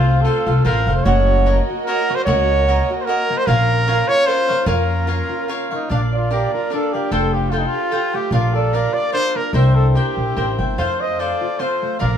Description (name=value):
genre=mexican folk, mariachi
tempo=148 BPM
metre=3/4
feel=swing 54% on 8ths, rubato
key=Bb harmonic minor, Bb major from 5.9 s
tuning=A4 = 440 Hz
part: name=mellow trumpet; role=melody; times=0.0-12.2 s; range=D4 to Eb5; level=-20 LUFS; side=equal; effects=none
part: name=cavaquinho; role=accompaniment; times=0.0-12.2 s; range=D4 to G5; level=-24 LUFS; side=left 1 dB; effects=none
part: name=muted studio violin section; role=sustained chords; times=0.0-12.2 s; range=G3 to Eb5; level=-30 LUFS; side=left 1 dB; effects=none
part: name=concert harp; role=arpeggios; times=0.0-12.2 s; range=A3 to G5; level=-25 LUFS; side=right 3 dB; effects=none
part: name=upright bass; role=bass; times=0.0-12.2 s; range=F1 to F2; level=-17 LUFS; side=equal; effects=none
room=moderate studio ambience, RT60 0.4 s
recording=band playing live in one room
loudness=-15 LUFS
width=side -8 dB against mid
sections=0.0-5.9 A section; 5.9-12.2 B section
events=none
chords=0.0 F; 1.1 Gb6; 3.5 Bbm; 5.9 Bb; 7.1 Fadd9; 8.3 Bb; 9.5 C7; 10.8 F